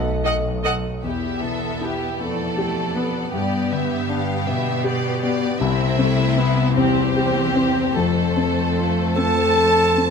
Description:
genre	cinematic, emotional film score for orchestra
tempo	52 BPM (dotted quarters)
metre	6/8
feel	uneven beats, rubato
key	E phrygian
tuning	A4 = 440 Hz
part	warm grand piano	accompaniment	0.0-10.1 s	B1 to D#5	-24 LUFS	left 3 dB	none
part	dark French horn section	sustained chords	0.0-0.7, 9.2-10.1 s	A4 to D#5	-24 LUFS	left 2 dB	none
part	concert harp	arpeggios	0.0-10.1 s	G2 to C5	-26 LUFS	left 12 dB	none
part	rich studio double bass section	bass	0.0-0.9 s	B1	-27 LUFS	right 3 dB	none
part	rich studio viola section	accompaniment	0.2-10.1 s	A3 to D#5	-27 LUFS	right 3 dB	none
part	warm studio violin section	second line	0.3-10.1 s	E4 to A5	-25 LUFS	equal	none
part	rich studio violin section	melody	1.0-10.1 s	C5 to F5	-30 LUFS	left 2 dB	none
part	rich studio cello section	bass	1.0-10.1 s	E2 to C3	-27 LUFS	right 4 dB	none
part	clear clarinet	second line	9.2-10.1 s	A4	-22 LUFS	right 1 dB	none
room	moderate scoring stage reverb, RT60 2.1 s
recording	close, detailed microphones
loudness	-18 LUFS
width	side -6 dB against mid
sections	0.0-1.0 A section; 1.0-10.1 B section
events	none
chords	0.0 B7; 1.0 Em; 3.3 G; 5.6 C; 8.0 F

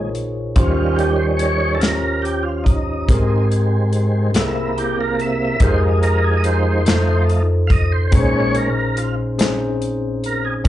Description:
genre	slow gospel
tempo	48 BPM (dotted quarters)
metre	6/8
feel	straight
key	unclear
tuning	A4 = 440 Hz
part	bright tine electric piano	accompaniment	0.0-10.7 s	Bb1 to Db5	-18 LUFS	left 1 dB	medium stereo tremolo
part	overdriven tonewheel organ	sustained chords	0.0-10.7 s	Ab2 to F5	-20 LUFS	right 2 dB	slow rotary speaker, chorus vibrato
part	natural country drum kit	drums	0.1-10.7 s	hi-hat, kick drum, snare drum	-18 LUFS	equal	none
room	light reverb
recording	live gig heard through the venue's PA, club reverb, nothing above 10.7 kHz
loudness	-15 LUFS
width	side -13 dB against mid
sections	0.0-10.7 A section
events	tonewheel organ solo 0.0-10.7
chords	0.0 Bb7sus4; 0.6 Eb13; 3.1 Abmaj9; 4.3 C7b13; 5.6 Fm11; 6.9 F7; 8.1 Bbm11

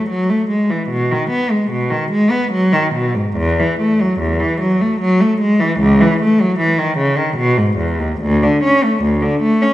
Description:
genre	classical, baroque-style suite movement for unaccompanied cello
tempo	74 BPM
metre	3/4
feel	uneven beats, rubato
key	unclear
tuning	A4 = 440 Hz
part	clear cello	solo	0.0-9.7 s	C#2 to C#4	-13 LUFS	equal	none
room	wet recital hall reverb, RT60 1.7 s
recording	nothing above 10.3 kHz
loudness	-13 LUFS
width	side -14 dB against mid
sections	0.0-9.7 A section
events	none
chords	none

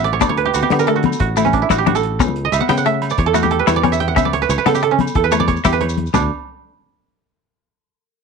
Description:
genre	highlife guitar band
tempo	122 BPM (dotted quarters)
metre	12/8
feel	straight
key	unclear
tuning	A4 = 439 Hz
part	clean electric guitar	accompaniment	0.0-6.2 s	A3 to E4	-21 LUFS	left 15 dB	wide subtle chorus
part	koto	arpeggios	0.0-6.3 s	C#4 to G5	-17 LUFS	right 11 dB	slapback echo
part	fingered electric bass	bass	0.0-6.3 s	A1 to D3	-21 LUFS	left 1 dB	none
part	damped 70s drum kit	drums	0.0-6.2 s	crash cymbal, hi-hat, kick drum, snare drum, toms	-22 LUFS	left 3 dB	none
part	agogo bells	percussion	0.2-6.2 s	none	-28 LUFS	right 10 dB	none
part	congas	percussion	0.2-6.3 s	none	-22 LUFS	left 12 dB	none
part	maracas	percussion	0.2-6.3 s	none	-32 LUFS	left 17 dB	none
room	light reverb, small room ambience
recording	1960s-style stereo with parts hard left and right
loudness	-14 LUFS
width	side -5 dB against mid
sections	0.0-6.1 A section; 6.1-8.1 B section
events	koto solo 0.0-6.1; drum fill 5.5-6.1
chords	0.0 D5; 2.2 A/C#; 6.1 N.C.

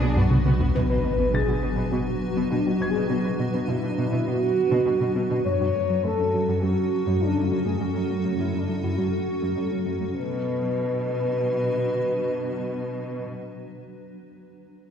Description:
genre	cinematic, hybrid orchestral and electronic film score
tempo	102 BPM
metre	4/4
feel	straight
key	B dorian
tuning	A4 = 443 Hz
part	warm symphonic violin section	second line	0.0-0.7 s	F#4 to G#4	-38 LUFS	left 2 dB	none
part	warm symphonic viola section	accompaniment	0.0-0.7 s	B3 to F#4	-35 LUFS	equal	none
part	granular cloud pad	sustained chords	0.0-13.3 s	F#3 to B4	-29 LUFS	left 2 dB	built-in reverb
part	warm French horn section	sustained chords	0.0-13.3 s	B3 to C#5	-26 LUFS	equal	none
part	glassy wavetable pluck	arpeggios	0.0-10.1 s	F#3 to B4	-32 LUFS	equal	chorus, tape echo
part	smooth gliding synth bass	riff	0.0-0.7 s	B2 to B3	-30 LUFS	right 2 dB	none
part	rich chamber double bass section	bass	0.0-0.7 s	none	barely audible	none	none
part	sub bass with octave	bass	0.0-0.7 s	B1	-27 LUFS	equal	none
part	warm symphonic cello section	bass	0.0-13.3 s	F#2 to D4	-29 LUFS	right 1 dB	none
part	clear baby grand piano	texture	0.0-5.5 s	F#5 to A6	-39 LUFS	left 2 dB	tape echo
part	taiko ensemble	drums	0.2-0.9 s	none	-22 LUFS	equal	none
part	impact	sound effects	0.8-3.1 s	none	-29 LUFS	equal	none
room	wet scoring stage reverb, RT60 1.8 s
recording	heard from further back in the room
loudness	-22 LUFS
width	side -8 dB against mid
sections	0.7-10.2 A section; 10.2-12.5 B section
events	drum fill 0.2-0.7; impact 0.7-3.1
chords	0.0 Bm; 5.5 F#m; 10.2 Bm

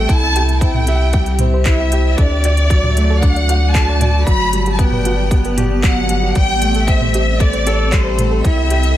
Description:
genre	piano and strings electronica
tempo	115 BPM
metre	4/4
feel	straight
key	unclear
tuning	A4 = 435 Hz
part	warm symphonic violin section	melody	0.0-9.0 s	C5 to B5	-20 LUFS	left 1 dB	tape echo
part	granular cloud pad	sustained chords	0.0-9.0 s	A3 to A5	-25 LUFS	right 1 dB	built-in reverb
part	soft round pluck	arpeggios	0.0-8.8 s	F#4 to E5	-28 LUFS	right 3 dB	chorus, sidechain pumping, tape echo
part	felt-muted upright piano	riff	0.0-9.0 s	F#3 to G5	-21 LUFS	equal	tape echo
part	warm sub bass	bass	0.0-9.0 s	G1 to D2	-16 LUFS	equal	sidechain pumping
part	electronic kick drum	drums	0.1-8.5 s	none	-15 LUFS	equal	overdrive
part	organic electronic drum kit	drums	0.1-8.9 s	handclaps, hi-hat, toms	-24 LUFS	equal	overdrive
room	light reverb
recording	none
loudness	-12 LUFS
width	side -12 dB against mid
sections	0.0-9.0 A section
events	none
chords	0.1 C; 2.2 D; 4.3 Gmaj7; 6.4 Am7; 8.4 C

